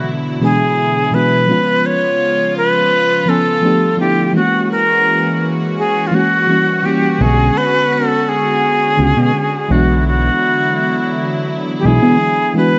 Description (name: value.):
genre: R&B.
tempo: 84 BPM.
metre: 4/4.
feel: straight.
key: unclear.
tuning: A4 = 440 Hz.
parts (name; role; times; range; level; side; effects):
bright silver concert flute; melody; 0.0-12.8 s; E#4 to C#5; -17 LUFS; equal; digital delay.
FM electric piano with tremolo; accompaniment; 0.0-12.8 s; B2 to G#5; -20 LUFS; equal; none.
warm studio string section; sustained chords; 0.0-12.8 s; C#3 to F#4; -24 LUFS; equal; none.
fat analog bass; bass; 7.2-12.2 s; B1 to B2; -16 LUFS; equal; none.
room: light reverb, studio ambience.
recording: nothing above 7.7 kHz.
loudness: -14 LUFS.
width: mono.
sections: 0.0-12.8 A section.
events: none.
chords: 0.0 E9/B; 1.5 C#7; 3.6 G9; 4.3 F#9; 6.5 F#7b9; 7.2 Bm69; 9.7 E9/B.